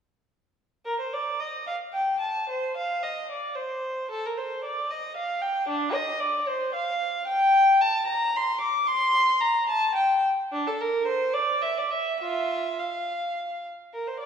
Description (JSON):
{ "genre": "classical, baroque-style suite movement for unaccompanied violin", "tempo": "102-115 BPM", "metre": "3/4", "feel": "rubato", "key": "F major from 7.3 s", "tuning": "A4 = 440 Hz", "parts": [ { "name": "dark violin", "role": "solo", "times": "0.9-14.3 s", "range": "D4 to D6", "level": "-24 LUFS", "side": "equal", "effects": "none" } ], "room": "wet recital hall reverb, RT60 1.8 s", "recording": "recorded in a church or concert hall", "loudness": "-24 LUFS", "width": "side -7 dB against mid", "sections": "0.9-14.0 A section", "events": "none", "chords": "none" }